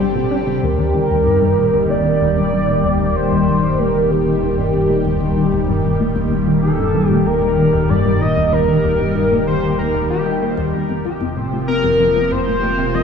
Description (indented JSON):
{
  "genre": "ambient, sequencer-driven space music",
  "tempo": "95 BPM",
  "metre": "4/4",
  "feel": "straight",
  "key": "Eb lydian",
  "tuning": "A4 = 440 Hz",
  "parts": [
    { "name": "lush unison pad", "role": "sustained chords", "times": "0.0-13.0 s", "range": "C3 to D5", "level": "-18 LUFS", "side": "left 1 dB", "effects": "chorus, phaser" },
    { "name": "resonant blip pluck", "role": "riff", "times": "0.0-13.0 s", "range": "Eb2 to D4", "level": "-20 LUFS", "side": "left 2 dB", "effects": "chorus, phaser, tape echo" },
    { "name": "warm sub bass", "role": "bass", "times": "0.0-13.0 s", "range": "Eb1 to G1", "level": "-27 LUFS", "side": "right 1 dB", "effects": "none" },
    { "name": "wind-like tuned noise texture", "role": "texture", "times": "0.0-0.6 s", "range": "C4 to A4", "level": "-35 LUFS", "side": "right 3 dB", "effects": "none" },
    { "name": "pulse-width lead", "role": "melody", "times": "0.6-13.0 s", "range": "G4 to Eb5", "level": "-19 LUFS", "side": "equal", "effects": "chorus, tape echo" }
  ],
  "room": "moderate plate reverb, RT60 2.8 s",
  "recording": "dreamy mix soaked in reverb, small room ambience",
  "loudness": "-14 LUFS",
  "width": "side -6 dB against mid",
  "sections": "0.6-13.0 A section",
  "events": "none",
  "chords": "0.0 Gsus4; 0.6 Eb; 10.7 Fsus4"
}